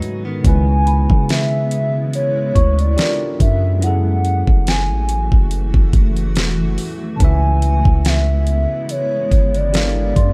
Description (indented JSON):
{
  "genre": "contemporary R&B",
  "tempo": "71 BPM",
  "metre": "4/4",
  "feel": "swing 54% on 16ths",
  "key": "C# minor",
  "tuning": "A4 = 440 Hz",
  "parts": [
    { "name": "tine electric piano", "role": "accompaniment", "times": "0.0-10.3 s", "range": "G#2 to F5", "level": "-26 LUFS", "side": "equal", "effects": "none" },
    { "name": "granular cloud pad", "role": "sustained chords", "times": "0.0-10.3 s", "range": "C#3 to F#4", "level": "-29 LUFS", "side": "equal", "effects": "built-in reverb" },
    { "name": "direct-recorded clean electric guitar", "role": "arpeggios", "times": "0.0-0.7 s", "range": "D#3 to D#4", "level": "-31 LUFS", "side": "equal", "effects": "lush chorus, delay" },
    { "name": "smooth R&B drum kit", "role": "drums", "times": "0.0-10.3 s", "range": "hi-hat, kick drum, snare drum", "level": "-18 LUFS", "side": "equal", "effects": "none" },
    { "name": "long sustained 808-style bass", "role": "bass", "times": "0.4-10.3 s", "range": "E1 to C#3", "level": "-20 LUFS", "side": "equal", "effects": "none" },
    { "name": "hollow clarinet-like synth lead", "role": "melody", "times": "0.5-10.3 s", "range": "C#5 to A5", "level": "-24 LUFS", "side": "equal", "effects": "chorus, delay" },
    { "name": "celesta", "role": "texture", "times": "0.9-3.4, 10.2-10.3 s", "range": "B5 to C#6", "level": "-35 LUFS", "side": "equal", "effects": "delay" }
  ],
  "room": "little or no reverb",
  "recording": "dark, warm production",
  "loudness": "-16 LUFS",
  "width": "mono",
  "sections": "0.4-10.3 A section",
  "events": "none",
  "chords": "0.4 C#m7; 3.0 Gm9; 3.8 F#m9; 7.2 C#m7; 9.7 Gm9",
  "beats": "| 0.44 1.29 2.13 2.98 | 3.82 4.67 5.51 6.36 | 7.20 8.05 8.89 9.74"
}